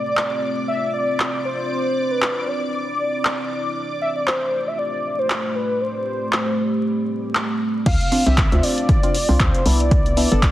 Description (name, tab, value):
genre	deep house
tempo	117 BPM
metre	4/4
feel	swing 56% on 16ths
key	unclear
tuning	A4 = 440 Hz
part	warm velvety synth lead	melody	0.0-10.5 s	B4 to F5	-24 LUFS	equal	chorus, tape echo
part	deep dark ambient pad	sustained chords	0.0-10.5 s	A3 to B5	-26 LUFS	equal	chorus, built-in reverb, sidechain pumping
part	analog string pad	texture	0.0-7.9 s	D5 to D6	-31 LUFS	left 2 dB	ensemble chorus, phaser
part	deep house drum kit	drums	0.2-10.5 s	crash cymbal, handclaps, hi-hat	-24 LUFS	equal	overdrive, studio reverb
part	hollow knocking FM bass	bass	7.9-10.5 s	G1 to D2	-19 LUFS	equal	none
part	electronic kick drum	drums	7.9-10.5 s	none	-18 LUFS	equal	overdrive, studio reverb
part	percussive organ stab	stabs	8.1-10.5 s	B3 to A4	-22 LUFS	equal	chorus, phaser, sidechain pumping, tape echo
room	light reverb, digital ambience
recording	dense, heavily limited modern master, vinyl crackle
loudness	-18 LUFS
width	side -14 dB against mid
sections	0.0-7.9 A section; 7.9-10.5 B section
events	drop 7.9-10.5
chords	0.0 Dm7; 1.7 Cmaj9; 3.8 F69; 5.6 Am9; 7.9 Dm7; 9.9 Cmaj9